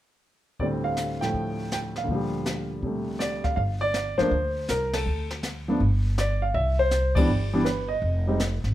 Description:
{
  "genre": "jazz piano trio",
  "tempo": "162 BPM",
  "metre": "4/4",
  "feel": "swing 66% on 8ths",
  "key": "G minor",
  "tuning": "A4 = 441 Hz",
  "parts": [
    { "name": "warm grand piano", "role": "melody", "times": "0.6-8.4 s", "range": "D2 to G5", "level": "-25 LUFS", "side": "equal", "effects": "plate reverb" },
    { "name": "jazz brush drum kit", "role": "drums", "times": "0.6-8.7 s", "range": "brushed snare drum, hi-hat, kick drum, ride cymbal, snare drum", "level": "-31 LUFS", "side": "left 1 dB", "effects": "none" },
    { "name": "upright bass", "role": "bass", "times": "3.6-8.7 s", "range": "F1 to D2", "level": "-26 LUFS", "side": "equal", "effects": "none" }
  ],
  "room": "moderate studio reverb, RT60 0.7 s",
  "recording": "none",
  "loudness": "-23 LUFS",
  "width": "side -14 dB against mid",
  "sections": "0.6-3.6 A section; 3.6-8.7 B section",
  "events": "band accent 4.9, 7.1",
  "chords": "0.6 D7sus4; 2.1 Gm9/D; 3.6 Gm; 5.1 D5; 5.8 G5; 6.5 Cmaj9; 8.0 Fm7"
}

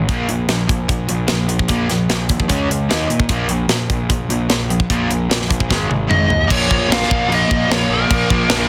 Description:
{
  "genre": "hard rock",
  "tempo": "150 BPM",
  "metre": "4/4",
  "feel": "straight",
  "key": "Bb minor",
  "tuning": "A4 = 444 Hz",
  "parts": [
    { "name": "overdriven semi-hollow guitar", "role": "riff", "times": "0.0-8.7 s", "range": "Ab2 to Eb4", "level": "-26 LUFS", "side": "equal", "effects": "none" },
    { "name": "overdriven semi-hollow guitar", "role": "riff", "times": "0.0-8.7 s", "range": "Ab2 to Eb4", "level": "-25 LUFS", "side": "equal", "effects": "spring reverb" },
    { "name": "fuzz picked electric bass", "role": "bass", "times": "0.0-8.6 s", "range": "Ab1 to Bb2", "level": "-24 LUFS", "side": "equal", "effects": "overdrive" },
    { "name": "tight metal drum kit", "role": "drums", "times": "0.1-8.6 s", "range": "crash cymbal, hi-hat, kick drum, snare drum, toms", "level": "-21 LUFS", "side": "equal", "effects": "none" },
    { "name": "biting lead guitar", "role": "melody", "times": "6.1-8.7 s", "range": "Bb4 to F5", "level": "-21 LUFS", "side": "equal", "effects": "overdrive, slapback echo" },
    { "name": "high-gain distorted guitar", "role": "riff", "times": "6.5-8.7 s", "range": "Bb2 to Bb3", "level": "-27 LUFS", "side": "equal", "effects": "none" }
  ],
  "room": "studio ambience",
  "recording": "dense, heavily limited modern master",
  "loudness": "-17 LUFS",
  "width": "mono",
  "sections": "0.0-6.5 A section; 6.5-8.7 B section",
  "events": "drum fill 5.7-6.5",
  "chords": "0.1 Bb5; 2.5 Db5; 2.9 Eb5; 3.3 Bb5; 5.7 Ab5; 6.5 Bbm"
}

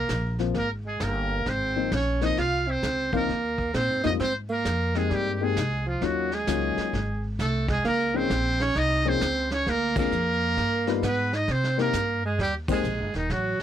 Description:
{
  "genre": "jazz, small-group swing and bop",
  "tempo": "132 BPM",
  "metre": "4/4",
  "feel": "swing 65% on 8ths",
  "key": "Ab major",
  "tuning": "A4 = 440 Hz",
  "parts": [
    { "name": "trumpet with metal mute", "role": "melody", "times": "0.0-13.6 s", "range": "Eb4 to F5", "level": "-28 LUFS", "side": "equal", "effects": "none" },
    { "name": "clear alto saxophone", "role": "second line", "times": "0.0-13.6 s", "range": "Eb3 to F4", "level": "-29 LUFS", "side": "right 4 dB", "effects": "none" },
    { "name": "upright bass", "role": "bass", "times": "0.0-13.6 s", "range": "Eb1 to C3", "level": "-29 LUFS", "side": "equal", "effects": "none" },
    { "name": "vintage brush drum kit", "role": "drums", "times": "0.1-13.6 s", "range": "brushed snare drum, crash cymbal, hi-hat, kick drum, snare drum", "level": "-32 LUFS", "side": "equal", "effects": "none" },
    { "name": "dark grand piano", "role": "accompaniment", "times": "0.4-12.8 s", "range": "Ab2 to C5", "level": "-29 LUFS", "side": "left 17 dB", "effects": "none" }
  ],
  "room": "light reverb",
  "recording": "dry, close 1970s-style studio recording",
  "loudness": "-23 LUFS",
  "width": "side -10 dB against mid",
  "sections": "0.0-4.2 A section; 4.2-13.6 B section",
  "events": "band accent 9.9, 12.6",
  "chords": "0.0 Ebsus2 (rootless); 0.5 Ab69; 4.2 Abmaj7; 6.0 Ebm7; 6.9 Ab; 7.8 Db69; 9.7 Dm7b5; 10.6 G7alt; 11.5 Cm7"
}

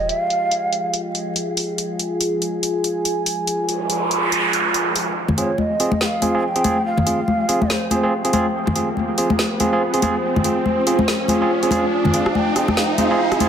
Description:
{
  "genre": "deep dubstep",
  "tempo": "142 BPM",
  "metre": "4/4",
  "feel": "swing 59% on 16ths, half-time",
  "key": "F minor",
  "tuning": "A4 = 440 Hz",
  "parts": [
    { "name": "breathy mellow shakuhachi", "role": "melody", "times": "0.0-0.9, 5.4-8.1, 12.1-13.5 s", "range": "C5 to Ab5", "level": "-24 LUFS", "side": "right 2 dB", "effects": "dub echo" },
    { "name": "dark analog pad", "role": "sustained chords", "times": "0.0-13.5 s", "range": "F4 to Ab5", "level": "-25 LUFS", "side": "equal", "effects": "chorus, phaser" },
    { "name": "sub drop, noise sweep and riser", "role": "sound effects", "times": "0.0-0.1, 3.6-13.5 s", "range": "none", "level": "-24 LUFS", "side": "right 2 dB", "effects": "none" },
    { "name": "deep house drum kit", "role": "drums", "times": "0.1-13.5 s", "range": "hi-hat, rim click, snare drum", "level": "-23 LUFS", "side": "equal", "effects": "low-pass filter on hats, small room ambience, low-pass filter on snare" },
    { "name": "congas", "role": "percussion", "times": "5.3-13.5 s", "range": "none", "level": "-21 LUFS", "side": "left 2 dB", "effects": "dub echo" },
    { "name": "bell-like tine electric piano", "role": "stabs", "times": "5.4-13.5 s", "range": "C4 to Ab4", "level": "-21 LUFS", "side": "right 2 dB", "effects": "low-pass filter, dub echo" }
  ],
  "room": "moderate digital room reverb, RT60 1.1 s",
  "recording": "dense, heavily limited modern master, vinyl crackle",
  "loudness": "-17 LUFS",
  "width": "side -8 dB against mid",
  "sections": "0.0-5.2 A section; 5.2-13.5 B section",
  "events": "noise sweep 3.6-5.2; build-up 5.2-13.5; riser 5.2-13.5",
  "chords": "0.0 Fm"
}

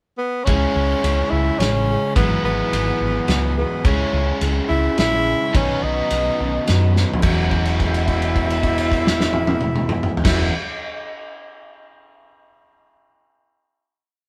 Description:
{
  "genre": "folk rock and heartland rock",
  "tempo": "107 BPM",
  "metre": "3/4",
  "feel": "straight",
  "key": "E major",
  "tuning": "A4 = 440 Hz",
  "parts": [
    { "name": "clear tenor saxophone", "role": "melody", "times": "0.2-10.5 s", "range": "B3 to E4", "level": "-25 LUFS", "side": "equal", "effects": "none" },
    { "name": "picked steel-string acoustic guitar", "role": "accompaniment", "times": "0.5-10.5 s", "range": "G#2 to B4", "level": "-29 LUFS", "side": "equal", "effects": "none" },
    { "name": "biting overdriven guitar", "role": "riff", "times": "0.5-10.5 s", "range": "E2 to B4", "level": "-28 LUFS", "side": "equal", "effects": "none" },
    { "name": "hollow-body short-scale fingered electric bass", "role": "bass", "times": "0.5-10.5 s", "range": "E1 to F#2", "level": "-24 LUFS", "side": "equal", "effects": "none" },
    { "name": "loose indie drum kit", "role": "drums", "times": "0.5-10.4 s", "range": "crash cymbal, kick drum, ride cymbal, snare drum, toms", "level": "-24 LUFS", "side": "equal", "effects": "none" }
  ],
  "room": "light reverb",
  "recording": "band playing live in one room",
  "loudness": "-19 LUFS",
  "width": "mono",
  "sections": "0.0-0.5 pickup bar; 0.5-7.2 pre-chorus; 7.2-10.6 final chord",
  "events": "drum fill 6.9; held note 7.2-10.2",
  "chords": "0.5 C#m; 2.2 Eadd9/G#; 3.9 C#m; 5.5 Badd9; 7.2 E69"
}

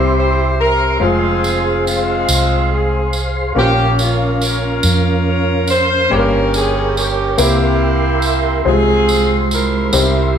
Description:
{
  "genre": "slow gospel",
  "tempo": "47 BPM (dotted quarters)",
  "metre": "6/8",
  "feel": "straight",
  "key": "F harmonic minor",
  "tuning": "A4 = 442 Hz",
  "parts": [
    { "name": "clear saxophone section", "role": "melody", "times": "0.0-10.4 s", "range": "G3 to Db5", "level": "-17 LUFS", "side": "right 1 dB", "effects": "none" },
    { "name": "clear upright piano", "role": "accompaniment", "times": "0.0-10.4 s", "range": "G2 to G5", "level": "-20 LUFS", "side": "left 4 dB", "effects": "none" },
    { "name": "mellow tonewheel organ", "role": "sustained chords", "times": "0.0-10.4 s", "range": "Ab3 to C6", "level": "-20 LUFS", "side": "right 2 dB", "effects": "fast rotary speaker, chorus vibrato" },
    { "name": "hollow-body short-scale fingered electric bass", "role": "bass", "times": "0.0-10.4 s", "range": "F1 to F2", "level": "-18 LUFS", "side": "equal", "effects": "none" },
    { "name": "tambourine", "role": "percussion", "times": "1.4-10.3 s", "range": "none", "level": "-22 LUFS", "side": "right 3 dB", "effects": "none" }
  ],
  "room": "wet large studio reverb, RT60 1.3 s",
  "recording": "band playing live in one room",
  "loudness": "-12 LUFS",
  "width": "side -8 dB against mid",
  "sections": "0.0-1.0 A section; 1.0-10.4 A section",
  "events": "none",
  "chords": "0.0 C; 1.0 Fm; 3.6 Bbm; 6.1 Gdim; 7.4 C7; 8.7 Fm/C"
}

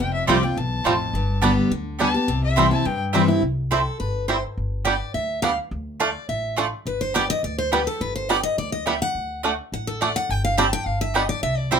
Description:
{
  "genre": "bluegrass",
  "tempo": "210 BPM",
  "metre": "4/4",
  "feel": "straight",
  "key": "unclear",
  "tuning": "A4 = 440 Hz",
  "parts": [
    { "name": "dark fiddle", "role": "second line", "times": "0.0-3.0 s", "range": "D5 to A5", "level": "-27 LUFS", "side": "left 4 dB", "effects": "none" },
    { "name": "picked steel-string acoustic guitar", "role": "accompaniment", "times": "0.0-11.8 s", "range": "E2 to A5", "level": "-24 LUFS", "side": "left 1 dB", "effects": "none" },
    { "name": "upright bass", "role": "bass", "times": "0.0-11.8 s", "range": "F1 to G2", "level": "-28 LUFS", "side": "equal", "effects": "none" },
    { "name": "bluegrass banjo", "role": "arpeggios", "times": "0.3-11.8 s", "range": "G3 to F4", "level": "-24 LUFS", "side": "right 3 dB", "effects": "none" },
    { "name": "mandolin", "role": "stabs", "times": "0.3-11.8 s", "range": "A3 to A5", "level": "-24 LUFS", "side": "right 5 dB", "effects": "none" }
  ],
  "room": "moderate small room reverb, RT60 0.5 s",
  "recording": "minimal, uncompressed stereo recording",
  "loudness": "-20 LUFS",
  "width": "side -7 dB against mid",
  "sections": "0.0-3.4 A section; 3.4-11.8 A section",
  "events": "fiddle solo 0.0-3.4; steel-string acoustic guitar solo 3.4-11.8",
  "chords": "0.0 Fadd9; 1.1 Gadd9; 2.3 C; 4.6 G; 5.7 Dm; 6.9 G; 9.2 D; 10.3 Gsus4; 10.9 G"
}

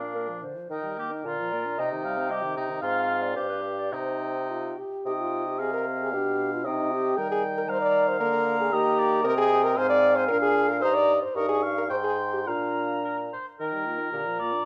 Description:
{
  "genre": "quick classical-period movement for wind quintet",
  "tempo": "104-118 BPM",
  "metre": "2/4",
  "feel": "rubato",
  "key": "C minor, Eb major from 9.2 s",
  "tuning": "A4 = 439 Hz",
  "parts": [
    { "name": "silver concert flute", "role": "melody", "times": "0.0-14.7 s", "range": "Eb5 to Db6", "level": "-36 LUFS", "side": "equal", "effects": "none" },
    { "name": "warm oboe", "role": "second line", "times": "0.0-14.7 s", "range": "D4 to G5", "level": "-33 LUFS", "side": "equal", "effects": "none" },
    { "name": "clear French horn", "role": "accompaniment", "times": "0.0-14.7 s", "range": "C3 to D5", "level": "-30 LUFS", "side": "equal", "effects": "none" },
    { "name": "dark clarinet", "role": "accompaniment", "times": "0.0-14.6 s", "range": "G3 to F5", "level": "-36 LUFS", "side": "equal", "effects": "none" },
    { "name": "mellow bassoon", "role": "bass", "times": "0.0-14.6 s", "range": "G2 to Eb3", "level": "-34 LUFS", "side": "equal", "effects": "none" }
  ],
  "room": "moderate large studio reverb, RT60 1.3 s",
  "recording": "none",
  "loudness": "-26 LUFS",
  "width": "mono",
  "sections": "0.0-5.1 A section; 5.1-13.6 B section; 13.6-14.7 A section",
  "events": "none",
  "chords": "0.0 Bb; 0.7 Eb; 1.3 Bb; 1.8 Cm; 2.8 Fm/Ab; 3.4 G7; 3.9 Cm; 6.1 G7/B; 6.7 Cm; 7.2 Eb; 8.2 Bb/D; 8.7 Eb; 9.2 Cm; 9.8 Fm/Ab; 10.3 Bb; 10.8 Eb/G; 11.4 Eb7/G; 11.9 Abmaj7; 12.5 Bb; 13.6 Eb; 14.1 Bb"
}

